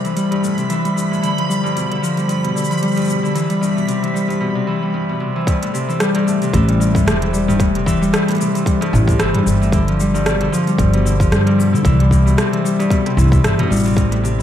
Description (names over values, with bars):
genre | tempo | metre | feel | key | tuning
folktronica | 113 BPM | 4/4 | swing 56% on 16ths | A minor | A4 = 440 Hz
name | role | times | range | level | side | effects
Celtic harp | arpeggios | 0.0-14.4 s | G2 to G3 | -16 LUFS | left 1 dB | low-pass filter, diffuse ambient delay
organic electronic drum kit | drums | 0.0-14.4 s | hi-hat, rim click, shaker, toms | -24 LUFS | equal | overdrive
backwards swelling texture | texture | 0.0-4.4 s | B5 | -26 LUFS | right 4 dB | built-in reverb, ensemble chorus
electronic kick drum | drums | 5.5-14.1 s | none | -18 LUFS | equal | overdrive
upright bass | bass | 6.5-14.4 s | E1 to G2 | -16 LUFS | equal | none
room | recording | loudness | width
moderate lush hall reverb, RT60 1.7 s | dreamy mix soaked in reverb, vinyl crackle | -14 LUFS | side -10 dB against mid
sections
0.0-5.5 A section; 5.5-14.4 B section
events
filter sweep on harp 0.0-5.5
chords
0.0 Am7; 1.2 G7; 3.4 Cmaj7; 5.5 Am7; 9.7 G7; 11.8 Cmaj7